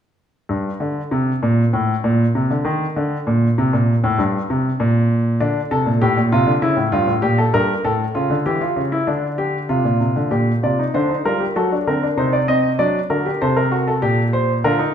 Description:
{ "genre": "classical, baroque-style 3-part fugue for grand piano", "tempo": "98 BPM", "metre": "4/4", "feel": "straight", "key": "G minor", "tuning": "A4 = 439 Hz", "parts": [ { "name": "warm baby grand piano", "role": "solo", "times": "0.5-14.9 s", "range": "G2 to D#5", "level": "-16 LUFS", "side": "equal", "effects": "none" } ], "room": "wet stone room reverb, RT60 1.3 s", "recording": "heard from further back in the room", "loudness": "-16 LUFS", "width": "side -8 dB against mid", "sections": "0.5-10.3 A section; 10.3-14.9 B section", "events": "none", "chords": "0.5 N.C.; 5.4 Dm; 6.6 C#dim7; 7.8 A7; 9.1 Dm; 10.3 Gm/Bb; 11.6 F#dim7; 12.8 D7; 14.0 Gm/Bb" }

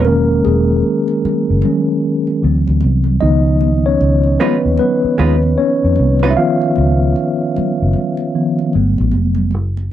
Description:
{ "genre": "R&B, neo-soul", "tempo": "76 BPM", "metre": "4/4", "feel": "swing 63% on 16ths", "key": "unclear", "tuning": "A4 = 440 Hz", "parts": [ { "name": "mellow tine electric piano", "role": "accompaniment", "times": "0.0-9.5 s", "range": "D#3 to E#5", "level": "-14 LUFS", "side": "left 1 dB", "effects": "medium stereo tremolo" }, { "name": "vintage muted fingered electric bass", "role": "bass", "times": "0.0-9.9 s", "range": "E1 to E#2", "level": "-14 LUFS", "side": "equal", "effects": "none" }, { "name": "congas", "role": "percussion", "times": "0.0-9.9 s", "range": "none", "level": "-26 LUFS", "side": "right 12 dB", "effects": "none" }, { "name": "vintage hollow-body jazz guitar", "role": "second line", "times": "4.4-6.3 s", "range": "G#3 to B4", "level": "-19 LUFS", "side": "right 7 dB", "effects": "none" } ], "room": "little or no reverb", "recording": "dry, close 1970s-style studio recording", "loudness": "-12 LUFS", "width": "side -12 dB against mid", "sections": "0.0-9.9 A section", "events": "tine electric piano solo 0.0-9.9", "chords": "0.0 Emaj13; 2.4 D9; 3.2 C#9; 8.7 Gmaj9" }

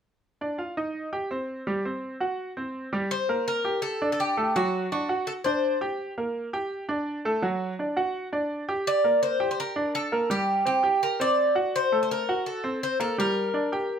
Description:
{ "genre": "latin", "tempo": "167 BPM", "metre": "4/4", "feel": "straight", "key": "G harmonic minor", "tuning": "A4 = 440 Hz", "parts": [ { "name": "clear grand piano", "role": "arpeggios", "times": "0.4-14.0 s", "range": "F#3 to G5", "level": "-28 LUFS", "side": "right 1 dB", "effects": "none" }, { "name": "Cuban tres", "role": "melody", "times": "3.1-5.8, 8.9-14.0 s", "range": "F#4 to D5", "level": "-25 LUFS", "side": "left 1 dB", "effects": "none" } ], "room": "light reverb", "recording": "close, detailed microphones", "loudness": "-24 LUFS", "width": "side -8 dB against mid", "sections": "0.2-3.1 A section; 3.1-14.0 B section", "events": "none", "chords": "0.2 Dm; 0.9 Cm; 1.7 C5; 3.1 Gmadd9; 4.5 D; 6.0 Gm; 7.4 D; 8.9 Gm; 10.3 C5; 11.7 Am6; 13.2 Gm" }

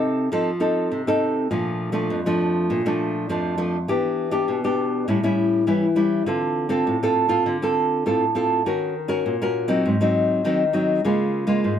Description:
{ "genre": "samba", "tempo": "101 BPM", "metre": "4/4", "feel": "straight", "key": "unclear", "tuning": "A4 = 442 Hz", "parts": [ { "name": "nylon-string guitar", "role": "solo", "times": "0.0-11.8 s", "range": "F2 to Bb4", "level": "-19 LUFS", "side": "equal", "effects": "none" } ], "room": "moderate studio reverb, RT60 0.8 s", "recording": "none", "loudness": "-19 LUFS", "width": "side -9 dB against mid", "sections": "0.0-11.8 A section", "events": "none", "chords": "0.0 F7; 1.5 Bbmaj7; 3.9 Em7; 5.1 A7; 6.3 Dm7; 8.7 Ebm7; 9.9 Ab7; 11.1 Db6" }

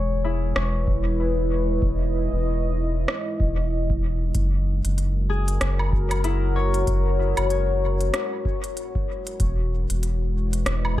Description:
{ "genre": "ambient dub", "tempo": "95 BPM", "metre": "4/4", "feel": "swing 58% on 16ths", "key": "unclear", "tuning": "A4 = 440 Hz", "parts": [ { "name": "deep dark ambient pad", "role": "sustained chords", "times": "0.0-11.0 s", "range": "G#3 to D#5", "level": "-28 LUFS", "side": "left 1 dB", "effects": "chorus, built-in reverb, vintage 12-bit sampler grit" }, { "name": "Celtic harp", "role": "arpeggios", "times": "0.0-11.0 s", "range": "E4 to C#5", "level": "-32 LUFS", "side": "left 6 dB", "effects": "low-pass filter, dub echo" }, { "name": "soft dub sub bass", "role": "bass", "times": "0.0-11.0 s", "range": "E1 to F#1", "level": "-23 LUFS", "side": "equal", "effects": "none" }, { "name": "organic electronic drum kit", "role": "drums", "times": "0.6-11.0 s", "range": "hi-hat, rim click, woodblock", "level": "-29 LUFS", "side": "right 1 dB", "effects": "overdrive, dub echo" }, { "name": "electronic kick drum", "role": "drums", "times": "0.9-11.0 s", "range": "none", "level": "-26 LUFS", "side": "equal", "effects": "none" } ], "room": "little or no reverb", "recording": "dark, warm production", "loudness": "-21 LUFS", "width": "side -14 dB against mid", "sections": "0.0-11.0 A section", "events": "filter sweep on harp 0.0-11.0", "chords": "0.0 Emaj7; 4.3 F#add9; 9.4 Emaj7" }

